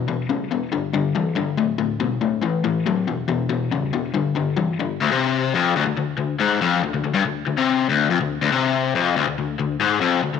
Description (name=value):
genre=rock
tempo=140 BPM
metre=4/4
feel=straight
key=unclear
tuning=A4 = 440 Hz
part: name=raw garage guitar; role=solo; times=0.0-10.4 s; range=D2 to F#3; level=-19 LUFS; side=left 6 dB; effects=overdrive
room=moderate echo chamber reverb, RT60 1.9 s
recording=none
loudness=-19 LUFS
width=side -6 dB against mid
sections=0.0-5.0 A section; 5.0-10.4 B section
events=none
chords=0.0 E5; 0.7 G5; 1.6 D5; 2.4 A5; 3.1 E5; 4.2 G5; 5.0 D5